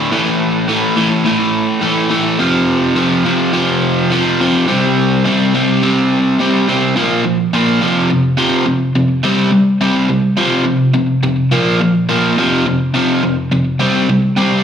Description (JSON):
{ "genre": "rock", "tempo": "105 BPM", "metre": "4/4", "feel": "straight", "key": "unclear", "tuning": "A4 = 440 Hz", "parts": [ { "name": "overdriven electric guitar", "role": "solo", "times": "0.0-14.6 s", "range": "D2 to C4", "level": "-12 LUFS", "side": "equal", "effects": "slapback echo" } ], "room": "light reverb", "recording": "live gig heard through the venue's PA, club reverb", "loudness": "-12 LUFS", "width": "side -8 dB against mid", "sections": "0.0-7.0 A section; 7.0-14.6 B section", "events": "none", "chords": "0.1 A5; 2.4 F5; 4.7 C5; 7.0 Bb5; 7.8 F5; 9.2 C5; 10.4 F5; 11.5 Bb5; 12.4 F5; 13.8 C5" }